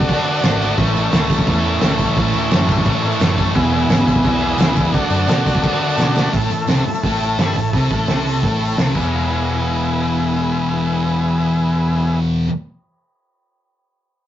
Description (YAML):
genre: garage rock duo or trio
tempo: 172 BPM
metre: 4/4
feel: straight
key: E mixolydian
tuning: A4 = 442 Hz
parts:
  - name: combo organ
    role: sustained chords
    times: 0.0-12.2 s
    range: A3 to A4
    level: -22 LUFS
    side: equal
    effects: none
  - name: thick fuzz guitar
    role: riff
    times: 0.0-12.5 s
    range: E2 to D4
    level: -18 LUFS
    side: left 1 dB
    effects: distortion
  - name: hollow-body short-scale picked electric bass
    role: bass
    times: 0.0-12.2 s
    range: E1 to D3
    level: -23 LUFS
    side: equal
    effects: none
  - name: cloth-damped thuddy drum kit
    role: drums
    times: 0.0-9.0 s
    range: crash cymbal, hi-hat, kick drum, snare drum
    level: -19 LUFS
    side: right 1 dB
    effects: none
  - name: tambourine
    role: percussion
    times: 0.0-9.3 s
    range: none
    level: -37 LUFS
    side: right 6 dB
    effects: none
room: moderate studio ambience, RT60 0.5 s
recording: rough rehearsal-room recording, nothing above 7.5 kHz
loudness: -15 LUFS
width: side -11 dB against mid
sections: 0.0-6.3 A section; 6.3-9.1 B section; 9.1-11.9 C section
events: drum fill 6.0-6.3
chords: 0.0 D; 0.8 A; 3.5 E; 4.9 D; 6.3 A5; 9.0 E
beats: 0.10 0.44 | 0.79 1.13 1.48 1.82 | 2.17 2.51 2.86 3.20 | 3.55 3.89 4.24 4.59 | 4.93 5.28 5.63 5.98 | 6.33 6.67 7.03 7.38 | 7.73 8.08 8.43 8.78 | 9.13 9.48 9.84 10.19 | 10.54 10.89 11.24 11.60